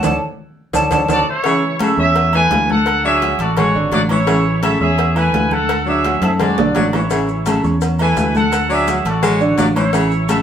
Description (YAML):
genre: latin, salsa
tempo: 170 BPM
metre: 4/4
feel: straight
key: unclear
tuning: A4 = 440 Hz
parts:
  - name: bright concert flute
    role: melody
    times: 0.0-1.2 s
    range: A5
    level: -18 LUFS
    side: equal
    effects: none
  - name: bright concert grand piano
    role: accompaniment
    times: 0.0-10.4 s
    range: D3 to D6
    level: -21 LUFS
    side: right 2 dB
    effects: none
  - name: fingered electric bass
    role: bass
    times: 0.0-10.4 s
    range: G#1 to F#2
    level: -20 LUFS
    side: equal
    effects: none
  - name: congas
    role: percussion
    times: 0.0-10.4 s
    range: none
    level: -23 LUFS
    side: left 1 dB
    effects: none
  - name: cowbell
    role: percussion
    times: 0.0-10.4 s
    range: none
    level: -26 LUFS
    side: left 4 dB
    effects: none
  - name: maracas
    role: percussion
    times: 0.0-1.2, 7.1-10.4 s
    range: none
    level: -34 LUFS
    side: left 4 dB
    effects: none
  - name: timbales and agogo bells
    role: percussion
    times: 0.0-10.4 s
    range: none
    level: -25 LUFS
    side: right 3 dB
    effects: none
  - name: clear trumpet section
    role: melody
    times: 1.1-10.4 s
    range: E4 to G#5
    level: -18 LUFS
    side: right 1 dB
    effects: none
  - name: clear baritone saxophone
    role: second line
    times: 1.4-10.4 s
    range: C#3 to G#3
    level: -21 LUFS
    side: left 1 dB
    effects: none
room: wet studio reverb, RT60 0.5 s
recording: band playing live in one room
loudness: -13 LUFS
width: side -9 dB against mid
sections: 0.0-1.4 A section; 1.4-10.4 B section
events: flute solo 0.0-1.4; drum fill 0.0-1.4, 6.2-7.1; band accent 0.0-1.4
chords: 0.0 Dmaj7(no3); 1.4 A; 2.9 Dmaj7; 4.3 A; 5.7 Dmaj7; 7.1 A; 8.5 Dmaj7